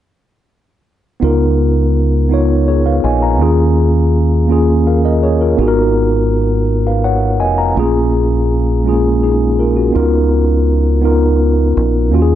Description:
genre	slow six-eight R&B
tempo	55 BPM (dotted quarters)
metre	6/8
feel	straight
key	unclear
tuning	A4 = 440 Hz
part	mellow tine electric piano	accompaniment	1.2-12.4 s	G#3 to A#5	-14 LUFS	equal	medium stereo tremolo
part	deep dub fingered electric bass	bass	1.2-12.4 s	E#1 to D#2	-14 LUFS	equal	none
room	digital ambience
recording	nothing above 10.9 kHz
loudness	-11 LUFS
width	side -11 dB against mid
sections	1.2-12.4 A section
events	none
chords	1.2 C#13; 3.4 D#7sus4; 5.6 G#m9; 7.8 A#m7; 9.9 C#13

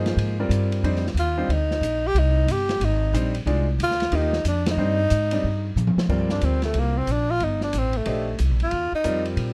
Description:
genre	modal jazz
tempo	183 BPM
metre	4/4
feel	swing 63% on 8ths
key	C dorian from 6.1 s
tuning	A4 = 440 Hz
part	breathy tenor saxophone	melody	0.0-9.2 s	A3 to G4	-27 LUFS	equal	none
part	clear baby grand piano	accompaniment	0.0-9.5 s	F3 to Eb5	-30 LUFS	equal	none
part	upright bass	bass	0.0-9.5 s	G1 to Bb2	-26 LUFS	equal	none
part	open jazz drum kit	drums	0.1-9.5 s	crash cymbal, hi-hat, kick drum, ride cymbal, snare drum, toms	-33 LUFS	equal	none
room	little or no reverb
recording	close, detailed microphones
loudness	-23 LUFS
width	mono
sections	0.0-6.1 A section; 6.1-9.5 B section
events	band accent 4.6; drum fill 5.8-6.1; tenor saxophone solo 6.1-9.5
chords	0.0 Fm11; 6.1 C9sus4

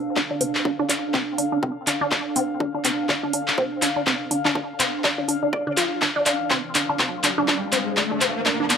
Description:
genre	minimal techno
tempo	123 BPM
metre	4/4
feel	swing 58% on 16ths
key	D minor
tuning	A4 = 441 Hz
part	warbly tape-like pad	texture	0.0-8.8 s	D4 to F5	-29 LUFS	equal	chorus, built-in reverb, sidechain pumping
part	resonant blip pluck	riff	0.2-8.8 s	C4 to D5	-25 LUFS	equal	phaser, sidechain pumping, digital delay
part	electronic kick drum	drums	0.2-8.6 s	none	-28 LUFS	left 1 dB	high-pass filter on kick
part	house drum kit	drums	0.2-8.8 s	handclaps, hi-hat	-22 LUFS	left 1 dB	none
part	riser	sound effects	6.4-8.8 s	none	-28 LUFS	left 1 dB	none
room	moderate studio ambience, RT60 0.5 s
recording	none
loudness	-20 LUFS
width	side -7 dB against mid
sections	0.0-8.8 A section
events	build-up 0.0-8.8; drum fill 0.0-8.8; riser 6.4-8.8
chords	0.0 Dm

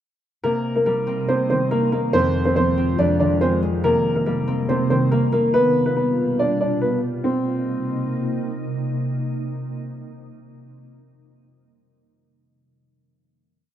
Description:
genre	hip hop, trap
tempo	141 BPM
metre	4/4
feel	half-time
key	C minor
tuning	A4 = 438 Hz
part	dark grand piano	melody	0.4-8.5 s	Bb3 to D5	-20 LUFS	equal	none
part	concert harp	accompaniment	0.4-8.5 s	F2 to C4	-24 LUFS	left 2 dB	none
part	glassy FM pad	sustained chords	0.4-10.7 s	B2 to F4	-26 LUFS	right 1 dB	ensemble chorus, built-in reverb
room	light reverb, small room ambience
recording	rough home demo mix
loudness	-18 LUFS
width	side -10 dB against mid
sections	0.4-7.2 breakdown; 7.2-10.6 final chord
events	none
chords	0.4 Cm7; 2.1 Fm7; 3.8 Cm7; 5.5 G7; 7.2 Cm7

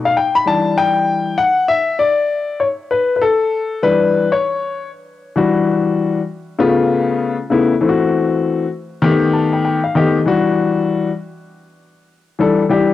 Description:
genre	hip hop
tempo	98 BPM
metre	4/4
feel	swing 60% on 16ths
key	E dorian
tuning	A4 = 440 Hz
part	warm upright piano	solo	0.0-12.9 s	B2 to B5	-14 LUFS	left 4 dB	cassette tape
room	light reverb, studio reverb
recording	home recording on cassette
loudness	-14 LUFS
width	side -13 dB against mid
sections	0.0-5.4 A section; 5.4-12.9 B section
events	upright piano solo 0.0-5.4; upright piano fill 9.0-10.2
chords	0.5 Em7; 5.4 Em9; 6.6 C#7alt; 7.8 F#m7b5; 9.0 Baug7; 10.2 Em9

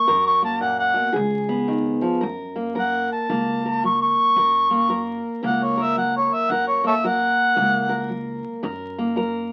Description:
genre	acoustic country blues, solo or duo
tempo	112 BPM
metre	4/4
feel	swing 64% on 8ths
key	F# major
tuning	A4 = 439 Hz
part	warm harmonica	melody	0.0-8.1 s	A4 to C#6	-21 LUFS	equal	none
part	fingerpicked steel-string acoustic guitar	accompaniment	0.0-9.5 s	F#2 to A#4	-27 LUFS	equal	none
part	upright bass	bass	0.1-9.5 s	C#2 to F#2	-34 LUFS	equal	none
room	moderate club reverb, RT60 0.5 s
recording	very old 78 rpm record, vinyl crackle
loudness	-21 LUFS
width	mono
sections	0.0-2.2 A section; 2.2-9.5 A section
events	harmonica solo 0.0-2.2, 2.2-9.5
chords	0.0 F#; 1.2 C#7; 2.2 F#

